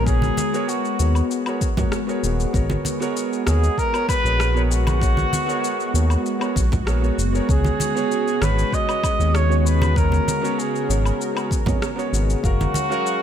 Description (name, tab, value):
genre	sunset chillout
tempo	97 BPM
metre	4/4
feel	straight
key	G# minor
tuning	A4 = 440 Hz
part	mellow flugelhorn	melody	0.0-13.2 s	F#4 to D#5	-25 LUFS	right 1 dB	ping-pong delay
part	dark baby grand piano	accompaniment	0.0-13.2 s	G#3 to E#5	-27 LUFS	moving between left 4 dB and right 4 dB	auto-pan, ping-pong delay
part	lush unison pad	sustained chords	0.0-13.2 s	C#3 to E#5	-27 LUFS	left 1 dB	chorus, phaser
part	round analog bass	bass	0.0-12.7 s	D#1 to D#2	-19 LUFS	equal	none
part	electronic kick drum	drums	0.1-12.6 s	none	-23 LUFS	equal	overdrive, studio reverb
part	electronic shaker, woodblock and rim click	drums	0.1-13.2 s	none	-30 LUFS	left 3 dB	overdrive, studio reverb
part	congas	percussion	0.2-12.9 s	none	-27 LUFS	right 2 dB	none
room	light reverb, studio ambience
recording	none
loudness	-18 LUFS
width	side -9 dB against mid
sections	0.0-13.2 A section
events	none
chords	0.0 G#m11; 7.5 C#7sus4; 12.4 F#maj9